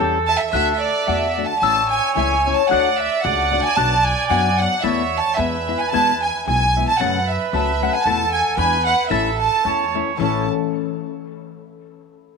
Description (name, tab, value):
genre	mexican folk, mariachi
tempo	112 BPM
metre	2/4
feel	swing 55% on 8ths, rubato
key	A major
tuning	A4 = 440 Hz
part	clear trumpet	second line	0.0-10.5 s	A4 to D5	-25 LUFS	right 13 dB	none
part	flamenco guitar	accompaniment	0.0-10.4 s	E2 to G4	-26 LUFS	left 13 dB	none
part	concert harp	arpeggios	0.0-10.5 s	E3 to A6	-24 LUFS	left 12 dB	tape echo
part	upright bass	bass	0.0-10.5 s	A1 to F#2	-26 LUFS	right 1 dB	tube saturation
part	clear studio violin section	melody	0.3-10.5 s	D5 to A5	-19 LUFS	right 3 dB	none
room	light reverb, small room ambience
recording	1960s-style stereo with parts hard left and right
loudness	-16 LUFS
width	side -4 dB against mid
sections	0.0-1.6 A section; 1.6-10.2 B section; 10.2-11.3 C section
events	none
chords	0.0 A7; 0.5 D; 1.6 A; 2.7 D; 3.8 Bm; 4.8 Esus4; 5.4 E; 7.0 F#m; 8.1 Esus4; 8.6 E7; 9.1 A